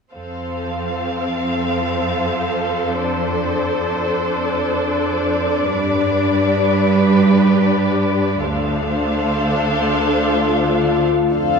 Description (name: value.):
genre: cinematic.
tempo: free time.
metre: none.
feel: none.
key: unclear.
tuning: A4 = 438 Hz.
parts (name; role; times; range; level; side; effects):
warm studio violin section; second line; 0.1-11.6 s; B4 to F5; -21 LUFS; left 1 dB; none.
warm studio viola section; accompaniment; 0.1-11.6 s; C4 to A4; -21 LUFS; left 1 dB; none.
rich studio cello section; bass; 0.1-11.6 s; D2 to G2; -20 LUFS; right 3 dB; none.
mellow French horn section; sustained chords; 10.3-11.6 s; D4 to F4; -19 LUFS; left 6 dB; none.
dark studio violin section; melody; 11.3-11.6 s; F5; -19 LUFS; left 13 dB; none.
room: wet concert hall reverb, RT60 2.3 s.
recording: heard from further back in the room.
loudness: -16 LUFS.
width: side -5 dB against mid.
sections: 0.1-11.3 A section.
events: none.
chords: 0.1 F; 3.0 Dm7/F; 5.7 G; 8.4 Dm7.